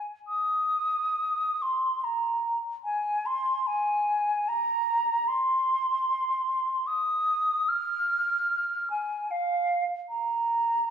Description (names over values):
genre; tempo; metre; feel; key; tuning
classical, free, expressive piece for unaccompanied flute; free time; none; none; Ab major; A4 = 440 Hz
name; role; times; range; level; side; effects
mellow hollow silver concert flute; solo; 0.0-10.9 s; F5 to F6; -25 LUFS; equal; none
room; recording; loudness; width
wet recital hall reverb, RT60 1.4 s; heard from further back in the room; -25 LUFS; side -8 dB against mid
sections
0.0-10.9 A section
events
none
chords
none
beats
free time